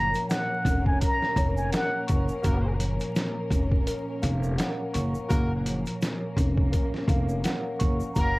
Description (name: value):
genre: hip hop, boom-bap hip-hop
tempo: 84 BPM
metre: 4/4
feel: swing 56% on 16ths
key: F# major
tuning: A4 = 440 Hz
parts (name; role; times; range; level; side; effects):
- trumpet with plunger mute; melody; 0.0-2.1, 8.2-8.4 s; F#5 to A#5; -27 LUFS; equal; high-pass filter, low-pass filter, cassette tape, analog delay
- mellow tine electric piano; accompaniment; 0.0-8.2 s; A#2 to C#6; -32 LUFS; equal; medium stereo tremolo, high-pass filter, low-pass filter, cassette tape
- warm studio string section; sustained chords; 0.0-8.4 s; A#3 to A#4; -35 LUFS; left 1 dB; high-pass filter, low-pass filter, cassette tape
- upright bass; bass; 0.0-8.4 s; E#1 to F#1; -27 LUFS; equal; none
- tube shaker; percussion; 0.1-8.3 s; none; -49 LUFS; right 3 dB; none
- trip hop sampler-style drum kit; drums; 0.2-8.3 s; hi-hat, kick drum, snare drum; -26 LUFS; equal; cassette tape
- warm horn section; stabs; 2.4-8.4 s; A#3 to A#4; -35 LUFS; left 1 dB; high-pass filter, low-pass filter, cassette tape, analog delay
room: little or no reverb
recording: home recording on cassette, vinyl crackle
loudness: -24 LUFS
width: side -22 dB against mid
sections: 0.0-8.4 A section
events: none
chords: 0.0 F#maj7